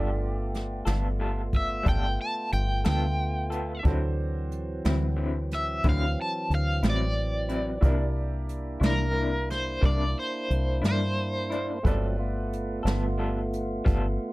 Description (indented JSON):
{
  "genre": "slow blues",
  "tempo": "60 BPM (dotted quarters)",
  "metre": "12/8",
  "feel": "straight",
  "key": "G mixolydian",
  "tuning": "A4 = 440 Hz",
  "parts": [
    { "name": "overdriven semi-hollow guitar", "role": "melody", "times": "0.0-11.8 s", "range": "G4 to A5", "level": "-31 LUFS", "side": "equal", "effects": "tremolo" },
    { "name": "bright upright piano", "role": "accompaniment", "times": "0.0-14.3 s", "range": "D4 to D5", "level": "-40 LUFS", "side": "right 4 dB", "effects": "none" },
    { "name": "electric guitar through a small old amp", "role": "accompaniment", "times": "0.0-14.1 s", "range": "C3 to A4", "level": "-33 LUFS", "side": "left 2 dB", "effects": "tremolo" },
    { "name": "tonewheel organ", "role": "sustained chords", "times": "0.0-14.3 s", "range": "E3 to F4", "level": "-34 LUFS", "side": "right 1 dB", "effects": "slow rotary speaker" },
    { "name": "deep dub fingered electric bass", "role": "bass", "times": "0.0-14.2 s", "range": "G1 to G2", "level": "-28 LUFS", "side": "equal", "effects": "none" },
    { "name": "jazz brush drum kit", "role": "drums", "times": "0.5-14.0 s", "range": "hi-hat, kick drum, snare drum", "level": "-28 LUFS", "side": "equal", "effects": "none" }
  ],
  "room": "small room ambience",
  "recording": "none",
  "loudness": "-25 LUFS",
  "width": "side -20 dB against mid",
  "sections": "0.0-14.3 A section",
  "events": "none",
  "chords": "0.0 G9; 3.9 D9; 7.8 C9; 11.8 G9"
}